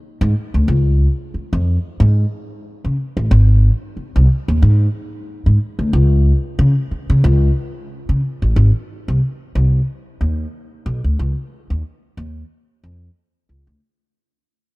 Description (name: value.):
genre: funk.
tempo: 91 BPM.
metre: 4/4.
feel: swing 56% on 16ths.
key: unclear.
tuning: A4 = 440 Hz.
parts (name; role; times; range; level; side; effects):
upright bass; solo; 0.2-13.8 s; Ab1 to Db3; -14 LUFS; equal; none.
room: little or no reverb.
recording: dry, close 1970s-style studio recording.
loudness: -14 LUFS.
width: side -23 dB against mid.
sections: 0.0-8.6 A section; 8.6-13.8 B section.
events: fade-out 8.6-13.8.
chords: none.